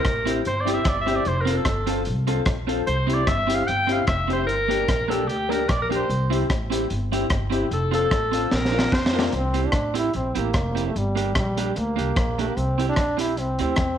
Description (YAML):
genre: ska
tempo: 149 BPM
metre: 4/4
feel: swing 54% on 8ths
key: C mixolydian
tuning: A4 = 440 Hz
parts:
  - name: bright alto saxophone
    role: melody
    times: 0.0-9.3 s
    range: G4 to G5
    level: -24 LUFS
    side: equal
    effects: slapback echo
  - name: crunchy breakbeat drum kit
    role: drums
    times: 0.0-13.9 s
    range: hi-hat, kick drum, rim click, snare drum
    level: -26 LUFS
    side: equal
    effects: none
  - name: upright bass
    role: bass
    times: 0.1-14.0 s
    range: F1 to F2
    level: -27 LUFS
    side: equal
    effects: none
  - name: electric guitar at the edge of break-up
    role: accompaniment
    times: 0.3-13.7 s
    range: Bb3 to Bb4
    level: -29 LUFS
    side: right 11 dB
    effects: none
  - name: dark upright piano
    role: stabs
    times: 0.3-9.3 s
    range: Bb3 to Bb4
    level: -28 LUFS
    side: left 10 dB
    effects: slapback echo
  - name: clear trombone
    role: melody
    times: 9.2-14.0 s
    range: G3 to E4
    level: -26 LUFS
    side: equal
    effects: tube saturation
room: moderate echo chamber reverb, RT60 1.4 s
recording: 1960s-style stereo with parts hard left and right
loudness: -20 LUFS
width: side -9 dB against mid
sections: 0.0-9.3 A section; 9.3-14.0 B section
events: alto saxophone solo 0.0-9.3; drum fill 8.5-9.3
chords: 0.0 C; 1.3 F; 2.9 C; 4.5 Gm; 6.1 C; 7.7 F; 8.5 Bb; 9.3 C; 10.9 Gm; 12.6 C